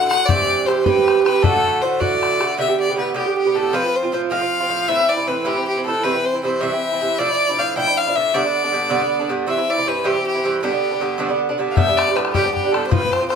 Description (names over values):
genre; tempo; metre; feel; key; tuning
celtic folk, Celtic jig; 105 BPM (dotted quarters); 6/8; straight; G mixolydian; A4 = 440 Hz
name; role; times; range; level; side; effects
clear fiddle; melody; 0.0-13.4 s; G4 to G5; -19 LUFS; left 3 dB; none
Irish bouzouki; accompaniment; 0.0-13.4 s; G2 to G4; -20 LUFS; right 5 dB; none
bodhran; percussion; 0.1-2.5, 11.8-13.4 s; none; -21 LUFS; left 5 dB; none
room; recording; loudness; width
moderate studio reverb, RT60 0.6 s; none; -16 LUFS; side -6 dB against mid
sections
0.0-2.6 A section; 2.6-11.8 B section; 11.8-13.4 B section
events
none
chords
0.3 C; 1.4 D; 2.6 Gadd9; 3.7 F; 4.9 Am; 6.0 C; 7.2 Dmadd9; 8.3 G; 9.5 C; 10.6 G; 11.8 Gadd9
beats
| 0.29 0.87 | 1.44 2.02 | 2.59 3.17 | 3.74 4.31 | 4.89 5.46 | 6.04 6.61 | 7.18 7.76 | 8.33 8.90 | 9.48 10.05 | 10.62 11.19 | 11.77 12.34 | 12.91